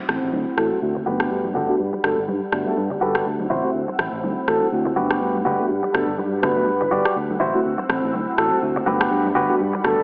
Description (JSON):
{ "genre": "filtered disco house", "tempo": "123 BPM", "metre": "4/4", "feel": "swing 56% on 16ths", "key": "G major", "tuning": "A4 = 443 Hz", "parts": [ { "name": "string machine, full ensemble", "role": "sustained chords", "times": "0.0-10.0 s", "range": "G3 to E6", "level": "-27 LUFS", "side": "equal", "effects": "ensemble chorus, low-pass filter" }, { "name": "direct-recorded clean electric guitar", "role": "riff", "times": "0.0-9.9 s", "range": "E4 to D5", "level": "-23 LUFS", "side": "equal", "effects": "low-pass filter" }, { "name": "bell-like tine electric piano", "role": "accompaniment", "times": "0.1-10.0 s", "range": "A3 to B5", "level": "-24 LUFS", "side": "equal", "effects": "phaser, low-pass filter" }, { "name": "fingered electric bass", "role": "bass", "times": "0.1-10.0 s", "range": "G1 to G2", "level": "-27 LUFS", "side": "equal", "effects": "low-pass filter" }, { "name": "electronic rim click", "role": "drums", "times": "0.1-10.0 s", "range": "none", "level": "-27 LUFS", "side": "equal", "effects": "studio reverb" }, { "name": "egg shaker and congas", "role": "percussion", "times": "0.1-10.0 s", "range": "none", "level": "-32 LUFS", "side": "equal", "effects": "low-pass filter on perc" }, { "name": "clear horn section", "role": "melody", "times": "0.6-10.0 s", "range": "A4 to B4", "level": "-24 LUFS", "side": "equal", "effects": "low-pass filter, tape echo" } ], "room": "moderate echo chamber reverb, RT60 2.4 s", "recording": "dry, gritty hardware recording, AM radio sound", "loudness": "-18 LUFS", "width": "side -39 dB against mid", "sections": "0.0-10.0 A section", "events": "filter sweep 0.0-10.0", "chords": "0.0 D9; 1.1 Gmaj7; 3.3 D9; 5.0 Gmaj7; 7.2 D9; 8.9 Gmaj7" }